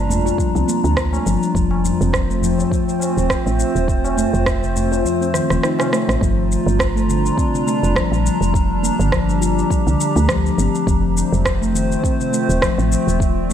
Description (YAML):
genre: organic downtempo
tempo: 103 BPM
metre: 4/4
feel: swing 56% on 16ths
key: unclear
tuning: A4 = 440 Hz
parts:
  - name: warbly tape-like pad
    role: sustained chords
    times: 0.0-13.5 s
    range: G3 to Bb5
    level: -22 LUFS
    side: right 1 dB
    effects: chorus, built-in reverb, sidechain pumping
  - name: steel tongue drum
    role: arpeggios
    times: 0.0-13.5 s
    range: C3 to F4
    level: -21 LUFS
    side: left 4 dB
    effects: ping-pong delay
  - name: woody FM bass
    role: bass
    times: 0.0-13.5 s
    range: Eb1 to F2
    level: -20 LUFS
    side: right 1 dB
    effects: sidechain pumping
  - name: electronic shaker and rim click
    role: drums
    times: 0.1-13.5 s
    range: none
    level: -24 LUFS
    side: right 1 dB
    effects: none
  - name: tabla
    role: percussion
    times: 0.1-5.9 s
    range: none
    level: -29 LUFS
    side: left 1 dB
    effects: none
  - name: electronic kick drum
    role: drums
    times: 0.4-13.3 s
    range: none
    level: -22 LUFS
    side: right 1 dB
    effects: none
room: light reverb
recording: none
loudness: -15 LUFS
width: side -9 dB against mid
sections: 0.0-6.2 A section; 6.2-13.5 B section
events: kick drops out 5.0-6.2; drum fill 5.3-6.2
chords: 0.0 Gm7; 1.6 F; 6.2 Gm7; 10.9 F